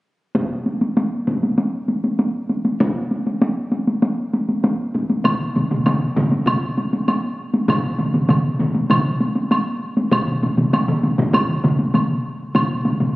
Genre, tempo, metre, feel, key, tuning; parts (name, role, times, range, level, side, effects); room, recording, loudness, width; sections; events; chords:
japanese traditional, taiko drum ensemble; 98 BPM; 4/4; straight
solo taiko drums; percussion; 0.3-13.1 s; -19 LUFS; equal
taiko ensemble; percussion; 0.4-12.7 s; -27 LUFS; equal
taiko ensemble; percussion; 5.2-13.1 s; -25 LUFS; left 1 dB
taiko ensemble; percussion; 5.2-13.1 s; -22 LUFS; right 1 dB
woodblock; percussion; 5.2-12.7 s; -25 LUFS; right 1 dB
wet concert hall reverb, RT60 1.8 s; recorded on a phone in the room, club reverb; -17 LUFS; side -19 dB against mid
0.4-5.2 A section; 5.2-13.2 B section